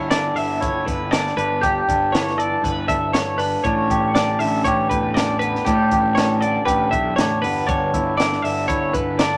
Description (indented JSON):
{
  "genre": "math rock and midwest emo",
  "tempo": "119 BPM",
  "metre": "4/4",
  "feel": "straight",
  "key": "unclear",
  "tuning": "A4 = 438 Hz",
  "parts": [
    { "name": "direct-recorded clean electric guitar", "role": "accompaniment", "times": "0.0-9.4 s", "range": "E2 to A4", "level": "-24 LUFS", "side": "equal", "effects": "none" },
    { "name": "twelve-string electric guitar", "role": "arpeggios", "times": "0.0-9.4 s", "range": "G4 to E5", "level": "-25 LUFS", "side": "equal", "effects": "none" },
    { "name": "fuzz picked electric bass", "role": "bass", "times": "0.0-9.4 s", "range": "G1 to A2", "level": "-28 LUFS", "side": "equal", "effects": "overdrive" },
    { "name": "compact cocktail drum kit", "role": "drums", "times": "0.1-9.3 s", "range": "hi-hat, kick drum, snare drum", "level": "-27 LUFS", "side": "equal", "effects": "none" }
  ],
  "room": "wet small room reverb, RT60 0.5 s",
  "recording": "none",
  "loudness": "-20 LUFS",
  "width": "mono",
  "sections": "0.0-9.4 A section",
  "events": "none",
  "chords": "0.0 G6; 1.4 Em7/G; 7.7 G6"
}